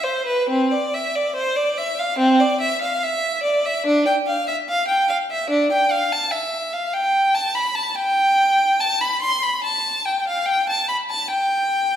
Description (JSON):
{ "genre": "classical, baroque-style suite movement for unaccompanied violin", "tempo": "72 BPM", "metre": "4/4", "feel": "rubato", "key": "unclear", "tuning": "A4 = 439 Hz", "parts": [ { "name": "clear violin", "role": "solo", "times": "0.0-12.0 s", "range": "C4 to C6", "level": "-18 LUFS", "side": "equal", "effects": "none" } ], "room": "wet recital hall reverb, RT60 1.6 s", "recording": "heard from further back in the room", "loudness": "-18 LUFS", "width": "side -10 dB against mid", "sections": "0.0-12.0 A section", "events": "none", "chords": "none", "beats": "| 0.48 1.34 2.19 3.02 | 3.85 4.68 5.51 6.32 | 7.15 7.97 8.81 9.64 | 10.47 11.31" }